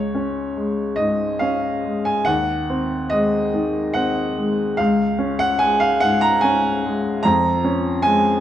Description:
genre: classical, romantic character piece for solo piano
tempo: 69-76 BPM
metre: 3/4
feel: rubato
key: Db major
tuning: A4 = 440 Hz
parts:
  - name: warm upright piano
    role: solo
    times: 0.0-8.4 s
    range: Db2 to Bb5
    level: -17 LUFS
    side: equal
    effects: none
room: wet recital hall reverb, RT60 1.3 s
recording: dark, warm production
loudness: -17 LUFS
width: side -11 dB against mid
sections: 0.0-8.4 A section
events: none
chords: 0.0 Db5; 2.3 Ab7/Eb; 4.8 Db5; 7.2 Db/F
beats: 0.56 1.41 | 2.27 3.12 3.95 | 4.79 5.61 6.43 | 7.24 8.04

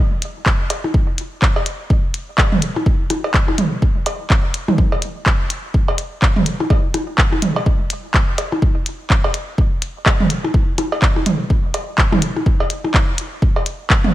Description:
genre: techno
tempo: 125 BPM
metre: 4/4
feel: swing 58% on 16ths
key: none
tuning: none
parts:
  - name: minimal click drum kit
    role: drums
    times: 0.2-14.0 s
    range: handclaps, hi-hat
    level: -20 LUFS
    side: equal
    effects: studio reverb
  - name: electronic kick drum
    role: drums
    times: 0.5-14.0 s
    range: none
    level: -16 LUFS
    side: equal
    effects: studio reverb
  - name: electronic cowbell, percussion blips and toms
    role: percussion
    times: 0.7-14.1 s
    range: none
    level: -20 LUFS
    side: right 1 dB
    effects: studio reverb, dub echo
room: little or no reverb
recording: none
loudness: -15 LUFS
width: side -14 dB against mid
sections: 0.0-14.1 A section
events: none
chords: none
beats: 0.46 0.94 1.42 | 1.90 2.38 2.86 3.34 | 3.82 4.30 4.78 5.26 | 5.74 6.22 6.70 7.18 | 7.66 8.14 8.62 9.10 | 9.58 10.06 10.54 11.02 | 11.50 11.98 12.46 12.94 | 13.42 13.90

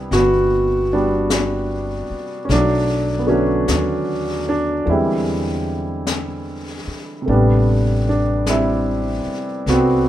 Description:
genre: jazz ballad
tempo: 50 BPM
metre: 4/4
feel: swing 66% on 8ths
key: E minor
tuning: A4 = 440 Hz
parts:
  - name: warm upright piano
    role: accompaniment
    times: 0.0-10.1 s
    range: C3 to B4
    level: -18 LUFS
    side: right 1 dB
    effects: none
  - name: upright bass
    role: bass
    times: 0.0-10.1 s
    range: G1 to E2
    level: -22 LUFS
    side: left 1 dB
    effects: none
  - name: jazz brush drum kit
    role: drums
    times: 0.1-10.1 s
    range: brushed snare drum, hi-hat, snare drum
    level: -27 LUFS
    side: left 4 dB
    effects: none
room: light reverb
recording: minimal, uncompressed stereo recording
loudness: -16 LUFS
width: side -12 dB against mid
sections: 0.0-10.1 A section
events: none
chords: 0.0 Cmaj7; 2.5 Bm7; 4.9 E7alt; 7.3 Am9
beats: 0.11 1.30 | 2.49 3.69 4.88 6.08 | 7.27 8.47 9.66

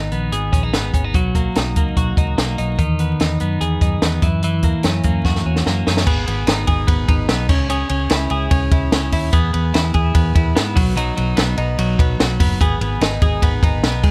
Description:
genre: jangly indie pop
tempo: 147 BPM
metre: 4/4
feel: straight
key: unclear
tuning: A4 = 436 Hz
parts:
  - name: twelve-string electric guitar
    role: arpeggios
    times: 0.0-14.1 s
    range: D#3 to G#4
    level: -24 LUFS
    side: equal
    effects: digital delay
  - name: vintage muted fingered electric bass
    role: bass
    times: 0.0-14.1 s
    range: F#1 to G#2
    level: -23 LUFS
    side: equal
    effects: none
  - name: compact cocktail drum kit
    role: drums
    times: 0.1-14.1 s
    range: crash cymbal, hi-hat, kick drum, ride cymbal, snare drum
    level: -20 LUFS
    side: equal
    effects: none
room: light reverb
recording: vinyl crackle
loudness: -18 LUFS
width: mono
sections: 0.0-6.1 A section; 6.1-14.1 B section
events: drum fill 5.2-6.1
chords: 0.0 G#m; 1.1 Bmaj7; 2.8 Emaj7; 4.2 F#7; 6.1 G#m; 7.5 C#m; 9.3 E; 10.8 B; 12.6 G#m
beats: 0.32 0.73 | 1.14 1.55 1.96 2.37 | 2.78 3.19 3.60 4.01 | 4.42 4.83 5.24 5.65 | 6.06 6.47 6.88 7.29 | 7.70 8.11 8.52 8.93 | 9.33 9.74 10.15 10.56 | 10.97 11.38 11.78 12.19 | 12.60 13.01 13.42 13.83

